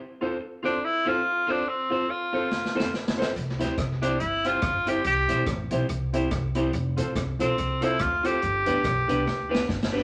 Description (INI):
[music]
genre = ska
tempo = 142 BPM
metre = 4/4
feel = swing 58% on 8ths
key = C major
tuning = A4 = 440 Hz
[part]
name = clean electric guitar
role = accompaniment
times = 0.2-10.0 s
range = D4 to C5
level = -35 LUFS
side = equal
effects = none
[part]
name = warm upright piano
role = stabs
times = 0.2-10.0 s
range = B3 to C5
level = -33 LUFS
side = equal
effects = none
[part]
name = clear tenor saxophone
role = melody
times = 0.7-9.7 s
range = C4 to G4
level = -28 LUFS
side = equal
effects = none
[part]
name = swinging big-band drum kit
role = drums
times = 2.5-10.0 s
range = hi-hat, kick drum, rim click, snare drum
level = -34 LUFS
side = equal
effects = tape echo
[part]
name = upright bass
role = bass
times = 3.4-10.0 s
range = F1 to D2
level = -32 LUFS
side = equal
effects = none
[sound]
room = moderate studio reverb, RT60 0.9 s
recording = none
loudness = -26 LUFS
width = mono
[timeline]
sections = 0.0-10.0 A section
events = drum fill 2.5-3.4, 9.3-10.0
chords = 0.0 F; 3.4 C; 6.7 F; 8.4 G